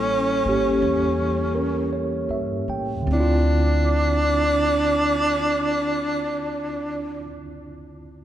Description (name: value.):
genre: jazz ballad.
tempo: 50-58 BPM.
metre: 4/4.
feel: swing 66% on 8ths.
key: D minor.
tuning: A4 = 440 Hz.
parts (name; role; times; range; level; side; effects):
breathy tenor saxophone; melody; 0.0-7.3 s; C#4 to D4; -22 LUFS; right 1 dB; none.
tine electric piano; accompaniment; 0.0-8.2 s; D2 to G5; -26 LUFS; equal; medium tremolo.
upright bass; bass; 0.0-7.3 s; G#1 to A2; -26 LUFS; equal; none.
room: wet church reverb, RT60 3.4 s.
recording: recorded in a church or concert hall.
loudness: -19 LUFS.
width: side -11 dB against mid.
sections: 0.0-3.1 A section; 3.1-7.8 B section.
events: slowing down 0.0-3.1.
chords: 0.0 A7b9; 3.1 Dm9.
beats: 0.81 1.92 | 3.08 4.27 5.46 6.65.